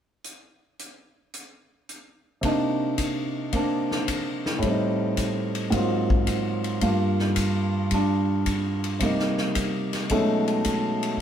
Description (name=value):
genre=jazz piano trio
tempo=109 BPM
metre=4/4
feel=swing 69% on 8ths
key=unclear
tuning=A4 = 440 Hz
part: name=swinging big-band drum kit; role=drums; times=0.2-11.1 s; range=hi-hat, kick drum, ride cymbal, snare drum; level=-30 LUFS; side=left 2 dB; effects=none
part: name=warm grand piano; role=melody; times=2.4-11.2 s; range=G2 to F4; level=-23 LUFS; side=right 1 dB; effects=none
room=wet small room ambience, RT60 0.5 s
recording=heard from further back in the room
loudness=-22 LUFS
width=side -9 dB against mid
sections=0.2-2.4 A section; 2.4-11.2 B section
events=none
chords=0.2 N.C.; 2.4 Cm9; 4.6 Am7b5; 5.7 Ab13; 6.8 Gm7; 9.0 Cm7; 10.1 B13